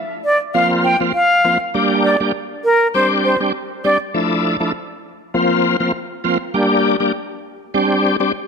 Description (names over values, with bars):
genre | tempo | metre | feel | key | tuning
dancehall | 100 BPM | 4/4 | straight | unclear | A4 = 440 Hz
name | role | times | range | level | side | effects
silver concert flute | melody | 0.2-4.0 s | Bb4 to G5 | -16 LUFS | equal | tape echo
bright tonewheel organ | accompaniment | 0.5-8.3 s | F3 to G4 | -17 LUFS | equal | overdrive, chorus vibrato, slow rotary speaker
room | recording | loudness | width
moderate lush hall reverb, RT60 2.3 s | dark, warm production | -14 LUFS | side -5 dB against mid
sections
0.0-8.5 A section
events
none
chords
0.0 N.C.; 0.5 Bbsus2; 1.7 Gm; 2.9 Csus2; 4.1 Dmadd9; 5.3 Bbsus2; 6.5 Gm; 7.7 Csus2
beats
0.55 1.15 | 1.75 2.35 2.94 3.54 | 4.14 4.75 5.34 5.95 | 6.54 7.14 7.75